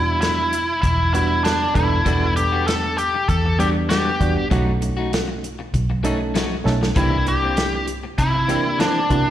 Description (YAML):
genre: straight-eighth soul blues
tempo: 98 BPM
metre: 4/4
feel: swing 53% on 16ths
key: unclear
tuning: A4 = 441 Hz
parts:
  - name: biting lead guitar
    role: melody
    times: 0.0-9.3 s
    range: D4 to A4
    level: -21 LUFS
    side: left 1 dB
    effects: overdrive, slapback echo
  - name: barky reed electric piano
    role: accompaniment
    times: 0.0-9.3 s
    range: G3 to A4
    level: -25 LUFS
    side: right 4 dB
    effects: overdrive, fast tremolo, slapback echo
  - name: vintage muted fingered electric bass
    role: bass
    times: 0.0-9.3 s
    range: E1 to C3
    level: -22 LUFS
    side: equal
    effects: none
  - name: warm soul drum kit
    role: drums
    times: 0.2-9.3 s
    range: hi-hat, kick drum, snare drum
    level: -24 LUFS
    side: equal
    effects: none
  - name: electric guitar at the edge of break-up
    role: stabs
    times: 2.1-9.3 s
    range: E3 to G4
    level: -28 LUFS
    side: left 7 dB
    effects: lush chorus, slapback echo
room: little or no reverb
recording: live gig heard through the venue's PA, recital hall reverb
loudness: -17 LUFS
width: side -12 dB against mid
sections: 0.0-9.3 A section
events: drum fill 6.7-7.0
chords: 0.0 Em9; 4.5 B7; 7.0 C7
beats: 0.22 0.83 1.45 | 2.06 2.67 3.29 3.90 | 4.51 5.12 5.74 6.35 | 6.96 7.58 8.19 8.80